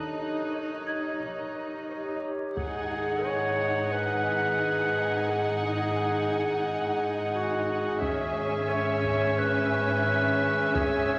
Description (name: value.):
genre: cinematic, suspense film score.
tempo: 88 BPM.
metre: 4/4.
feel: straight.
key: G# minor.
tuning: A4 = 440 Hz.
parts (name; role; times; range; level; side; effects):
glass harmonica; sustained chords; 0.0-11.2 s; G4 to F#5; -34 LUFS; equal; none.
dark studio cello section; bass; 0.0-11.2 s; G#2 to D#4; -39 LUFS; equal; none.
warm studio double bass section; bass; 0.0-11.2 s; G#1 to D#2; -40 LUFS; equal; none.
dark studio violin section; texture; 0.0-2.2, 8.0-11.2 s; C#6 to F#6; -44 LUFS; equal; none.
warm studio violin section; melody; 0.5-11.2 s; C#5 to G#5; -42 LUFS; equal; none.
music box; texture; 0.9-10.7 s; E5 to G#6; -42 LUFS; equal; none.
clear clarinet; second line; 1.9-11.2 s; F#4 to C#5; -32 LUFS; equal; none.
rich studio violin section; second line; 2.6-11.2 s; E5 to F#5; -36 LUFS; equal; none.
rich studio viola section; accompaniment; 2.6-11.2 s; C#4 to D#4; -35 LUFS; equal; none.
solo taiko drums; drums; 2.6-3.9, 8.0-11.2 s; none; -39 LUFS; equal; none.
room: wet scoring stage reverb, RT60 1.7 s.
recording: vinyl crackle.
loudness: -28 LUFS.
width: mono.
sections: 0.0-2.6 A section; 2.6-11.2 B section.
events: none.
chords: 0.0 D#7; 2.6 G#m7; 8.0 C#m/G#.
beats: 0.53 1.21 1.89 | 2.57 3.25 3.94 4.62 | 5.30 5.98 6.66 7.34 | 8.03 8.71 9.39 10.07 | 10.75.